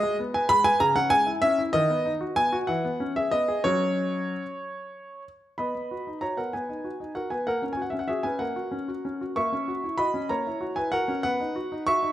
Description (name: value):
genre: classical-period piano sonatina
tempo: 64 BPM (dotted quarters)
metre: 6/8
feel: rubato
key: B major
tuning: A4 = 439 Hz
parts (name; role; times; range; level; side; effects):
- clear grand piano; solo; 0.0-12.1 s; C#3 to C#6; -24 LUFS; equal; none
room: moderate recital hall reverb, RT60 1.6 s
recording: close, detailed microphones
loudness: -24 LUFS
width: side -12 dB against mid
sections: 0.0-5.6 A section; 5.6-12.1 B section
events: none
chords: 0.0 G#m; 0.8 C#m; 1.7 B/D#; 2.7 C#m7/E; 3.6 F#5; 5.6 B; 7.5 F#/A#; 9.4 F#7/A#; 11.2 B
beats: 0.81 | 1.74 2.68 | 3.65 4.62 | 5.58 6.53 | 7.46 8.40 | 9.37 10.31 | 11.24